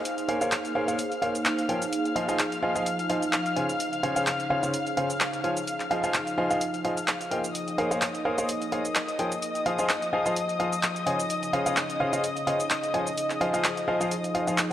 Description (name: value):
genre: piano house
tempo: 128 BPM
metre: 4/4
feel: swing 55% on 16ths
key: F minor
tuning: A4 = 441 Hz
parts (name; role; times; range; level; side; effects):
- muted studio violin section; sustained chords; 0.0-14.7 s; Eb5 to F6; -31 LUFS; left 2 dB; none
- warbly tape-like pad; texture; 0.0-14.7 s; Db3 to C5; -33 LUFS; right 1 dB; chorus, built-in reverb
- punchy analog drum machine; drums; 0.1-14.7 s; handclaps, hi-hat, shaker; -30 LUFS; equal; overdrive
- clear baby grand piano; riff; 0.3-14.7 s; Db3 to Ab5; -28 LUFS; equal; analog delay
room: moderate lush hall reverb, RT60 2.2 s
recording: dry, gritty hardware recording, cassette tape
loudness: -24 LUFS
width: side -12 dB against mid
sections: 0.0-14.7 A section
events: none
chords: 0.0 Bbm9; 1.9 Fm7; 3.6 Dbmaj7; 5.7 Fm7; 7.5 Bbm9; 9.4 Fm7; 11.1 Dbmaj7; 13.2 Fm7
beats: | 0.05 0.52 0.99 1.46 | 1.92 2.39 2.86 3.33 | 3.80 4.27 4.74 5.21 | 5.67 6.14 6.61 7.08 | 7.55 8.02 8.49 8.96 | 9.42 9.89 10.36 10.83 | 11.30 11.77 12.24 12.71 | 13.17 13.64 14.11 14.58